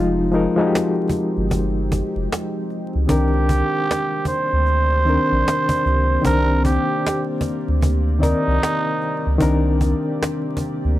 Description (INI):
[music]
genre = lo-fi hip hop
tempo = 76 BPM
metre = 4/4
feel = swing 64% on 16ths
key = C minor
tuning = A4 = 440 Hz
[part]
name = reed electric piano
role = accompaniment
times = 0.0-11.0 s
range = D3 to D5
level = -21 LUFS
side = left 2 dB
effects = fast tremolo, cassette tape, low-pass filter
[part]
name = deep dark ambient pad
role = sustained chords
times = 0.0-11.0 s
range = C3 to D5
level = -29 LUFS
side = right 1 dB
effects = chorus, built-in reverb, low-pass filter
[part]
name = soft dub sub bass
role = bass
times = 0.0-11.0 s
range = F1 to D2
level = -19 LUFS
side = equal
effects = none
[part]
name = cajon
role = drums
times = 0.3-10.9 s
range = none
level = -24 LUFS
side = equal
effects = none
[part]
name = trumpet with cup mute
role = melody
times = 3.1-9.4 s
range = Eb4 to C5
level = -22 LUFS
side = right 2 dB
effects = low-pass filter
[sound]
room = light reverb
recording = vinyl crackle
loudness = -17 LUFS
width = side -14 dB against mid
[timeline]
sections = 0.0-11.0 A section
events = none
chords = 0.0 Fm9; 3.1 Cm9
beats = 0.72 1.51 2.30 | 3.09 3.88 4.67 5.46 | 6.24 7.03 7.82 8.61 | 9.40 10.19 10.98